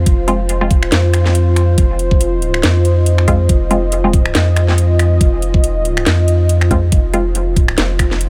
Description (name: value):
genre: deep dubstep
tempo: 140 BPM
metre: 4/4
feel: swing 56% on 16ths, half-time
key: F minor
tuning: A4 = 439 Hz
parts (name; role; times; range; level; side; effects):
- dark analog pad; sustained chords; 0.0-8.3 s; F4 to F5; -22 LUFS; equal; chorus
- filtered dub chord stab; stabs; 0.0-0.7, 3.3-4.1, 6.7-7.3 s; Ab3 to F4; -24 LUFS; equal; phaser, dub echo
- soft dub sub bass; bass; 0.0-8.3 s; F1 to F2; -16 LUFS; equal; none
- electronic kick drum; drums; 0.1-8.1 s; none; -15 LUFS; equal; none
- garage drum kit; drums; 0.1-8.3 s; finger snaps, hi-hat, snare drum; -21 LUFS; equal; none
room: digital ambience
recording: none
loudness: -13 LUFS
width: mono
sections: 0.0-8.3 A section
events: none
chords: 0.0 Fm